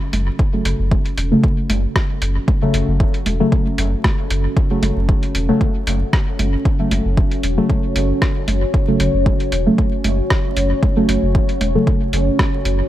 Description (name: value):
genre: dub techno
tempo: 115 BPM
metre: 4/4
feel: swing 54% on 16ths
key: F# minor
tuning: A4 = 440 Hz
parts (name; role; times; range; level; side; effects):
- deep dark ambient pad; sustained chords; 0.0-12.9 s; C#4 to C#5; -25 LUFS; equal; chorus, built-in reverb, sidechain pumping
- deep mellow chord stab; stabs; 0.0-12.9 s; C#3 to A3; -21 LUFS; equal; chorus, phaser, sidechain pumping, dub echo
- pure sine sub bass; bass; 0.1-12.8 s; E1 to F#1; -19 LUFS; equal; sidechain pumping
- lo-fi sampler-style drum kit; drums; 0.1-12.8 s; hi-hat, rim click; -24 LUFS; equal; dub echo
- congas; percussion; 0.1-12.5 s; none; -28 LUFS; right 2 dB; sidechain pumping on perc, dub echo
- electronic kick drum; drums; 0.4-12.5 s; none; -17 LUFS; equal; none
room: light reverb, digital ambience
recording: vinyl crackle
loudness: -15 LUFS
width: side -13 dB against mid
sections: 0.0-12.9 A section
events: none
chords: 0.0 F#m